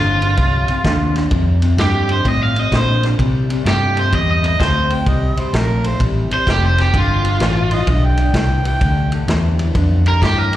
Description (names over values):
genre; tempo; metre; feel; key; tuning
electric blues shuffle; 128 BPM; 4/4; swing 66% on 8ths; C mixolydian; A4 = 439 Hz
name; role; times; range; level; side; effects
raw garage guitar; melody; 0.0-10.5 s; F4 to F5; -18 LUFS; right 2 dB; overdrive, slapback echo
electric guitar through a small old amp; riff; 0.0-10.6 s; F2 to A3; -23 LUFS; left 3 dB; lush chorus, slapback echo
vintage muted fingered electric bass; bass; 0.0-10.6 s; F1 to C3; -16 LUFS; equal; none
vintage drum kit; drums; 0.2-10.6 s; kick drum, ride cymbal, snare drum; -22 LUFS; equal; none
warm harmonica; second line; 4.9-9.1 s; Bb4 to G5; -24 LUFS; right 2 dB; overdrive, slapback echo
room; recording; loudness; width
small room reverb; live gig heard through the venue's PA, recital hall reverb; -13 LUFS; side -13 dB against mid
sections
0.0-10.6 A section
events
none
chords
0.0 F13; 3.2 C13; 6.9 G13